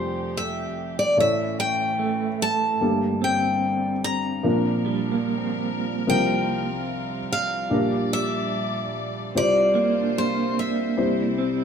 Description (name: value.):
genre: acoustic folk-pop ballad.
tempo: 73 BPM.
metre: 4/4.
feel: straight.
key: unclear.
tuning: A4 = 440 Hz.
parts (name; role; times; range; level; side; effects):
picked steel-string acoustic guitar; melody; 0.0-11.6 s; C5 to Bb5; -24 LUFS; left 1 dB; none.
felt-muted upright piano; accompaniment; 0.0-11.6 s; F1 to C#5; -26 LUFS; left 1 dB; none.
warm chamber string section; sustained chords; 0.0-11.6 s; F2 to D5; -32 LUFS; right 1 dB; none.
electric guitar through a small old amp; arpeggios; 2.0-11.6 s; G3 to D4; -26 LUFS; right 4 dB; tremolo.
room: light reverb.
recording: minimal, uncompressed stereo recording.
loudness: -21 LUFS.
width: side -7 dB against mid.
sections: 0.0-11.6 A section.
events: none.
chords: 0.0 Fadd9; 1.2 A; 2.8 Gmadd9; 4.4 Bb; 6.1 C7sus4; 7.7 Gm/Bb; 9.3 Csus4; 11.0 C.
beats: 0.35 1.17 1.99 | 2.81 3.62 4.44 5.26 | 6.07 6.89 7.71 8.52 | 9.34 10.16 10.98.